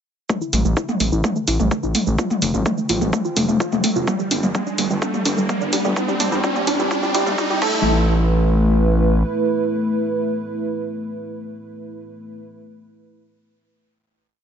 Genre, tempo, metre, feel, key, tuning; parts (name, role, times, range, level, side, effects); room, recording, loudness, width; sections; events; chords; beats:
melodic techno; 127 BPM; 4/4; straight; A minor; A4 = 440 Hz
dark analog pad; sustained chords; 1.4-12.4 s; G3 to G5; -25 LUFS; right 1 dB; chorus, sidechain pumping
tight sequenced synth; arpeggios; 0.3-8.1 s; G3 to F4; -22 LUFS; right 1 dB; chorus, sidechain pumping, tape echo
electronic kick drum; drums; 0.3-7.7 s; -24 LUFS; equal; high-pass filter on kick, high-pass filter on room
house drum kit; drums; 0.3-7.7 s; crash cymbal, hi-hat, shaker, toms; -23 LUFS; left 2 dB
riser; sound effects; 2.3-7.9 s; -28 LUFS; right 1 dB
gritty driven synth bass; bass; 0.5-9.2 s; F1 to E2; -20 LUFS; equal; tube saturation, sidechain pumping
moderate recital hall reverb, RT60 1.5 s, digital ambience; high-pass filter, nothing above 7.9 kHz; -17 LUFS; side -8 dB against mid
0.3-7.9 build; 7.9-11.6 final hit
build-up 0.3-7.9; drum fill 0.3-7.9; filter sweep on synth arpeggio sound 0.3-7.9; riser 2.3-7.9
0.3 A5; 2.2 F; 4.1 G5; 6.0 C; 7.6 A5
| 0.29 0.77 1.24 1.71 | 2.19 2.66 3.13 3.60 | 4.07 4.55 5.02 5.49 | 5.96 6.44 6.91 7.38 | 7.85 8.33 8.80 9.27 | 9.74 10.22 10.69 11.16